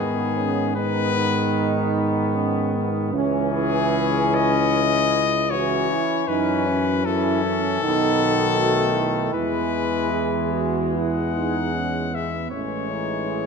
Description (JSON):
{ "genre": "classical, hymn-like piece for brass band", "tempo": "77 BPM", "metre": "4/4", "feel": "rubato", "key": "E major", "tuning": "A4 = 441 Hz", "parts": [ { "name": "mellow cornet", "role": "melody", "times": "0.0-13.5 s", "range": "G#4 to F#5", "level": "-24 LUFS", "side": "left 8 dB", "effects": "none" }, { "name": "mellow French horn section", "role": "second line", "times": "0.0-13.5 s", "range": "B3 to G#4", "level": "-26 LUFS", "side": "right 6 dB", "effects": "none" }, { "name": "clear trombone", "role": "accompaniment", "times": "0.0-13.5 s", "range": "D#3 to E3", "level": "-28 LUFS", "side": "right 2 dB", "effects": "none" }, { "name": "warm trombone section", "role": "accompaniment", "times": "0.0-13.5 s", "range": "G#3 to C#4", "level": "-28 LUFS", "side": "left 4 dB", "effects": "none" }, { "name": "mellow tuba", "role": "bass", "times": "0.0-13.5 s", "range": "A1 to G#2", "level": "-26 LUFS", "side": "right 1 dB", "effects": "none" } ], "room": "moderate scoring stage reverb, RT60 1.9 s", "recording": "none", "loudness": "-19 LUFS", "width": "side -5 dB against mid", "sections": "0.0-13.5 A section", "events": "none", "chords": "0.0 G#m; 3.1 C#m; 6.3 F#m7; 7.8 B7; 9.3 E; 12.5 Amaj7" }